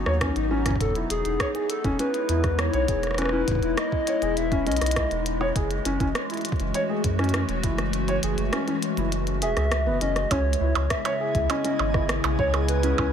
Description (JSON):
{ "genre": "IDM", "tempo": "101 BPM", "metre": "4/4", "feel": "straight", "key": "C# minor", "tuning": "A4 = 440 Hz", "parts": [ { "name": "warbly tape-like pad", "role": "sustained chords", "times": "0.0-13.1 s", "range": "C#3 to F#4", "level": "-29 LUFS", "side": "left 3 dB", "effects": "chorus, built-in reverb, phaser" }, { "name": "round analog bass", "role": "bass", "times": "0.0-13.1 s", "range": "E1 to F#2", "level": "-27 LUFS", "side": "equal", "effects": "none" }, { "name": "felt-muted upright piano", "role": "arpeggios", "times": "0.1-13.0 s", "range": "B3 to C#5", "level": "-29 LUFS", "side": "equal", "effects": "ping-pong delay" }, { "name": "glitchy drum kit", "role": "drums", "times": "0.1-13.1 s", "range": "hi-hat, percussion blips, rim click", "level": "-30 LUFS", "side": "right 1 dB", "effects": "overdrive, small room ambience" }, { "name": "electronic kick drum", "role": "drums", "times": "0.2-13.1 s", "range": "none", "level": "-28 LUFS", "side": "equal", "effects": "overdrive, small room ambience" }, { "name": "warbly nostalgic lead", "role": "melody", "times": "0.8-5.2, 9.4-13.1 s", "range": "G#4 to E5", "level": "-29 LUFS", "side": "equal", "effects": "chorus, cassette tape, ping-pong delay" }, { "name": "twinkling granular texture", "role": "texture", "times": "10.7-13.1 s", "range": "G#3 to G#4", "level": "-38 LUFS", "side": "left 1 dB", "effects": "built-in reverb" } ], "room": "light reverb, digital ambience", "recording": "none", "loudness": "-22 LUFS", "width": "side -8 dB against mid", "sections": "0.0-10.3 A section; 10.3-13.1 B section", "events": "kick drops out 7.9-10.3", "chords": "0.0 G#m7; 0.8 Emaj7; 5.6 F#m9; 10.3 C#m7" }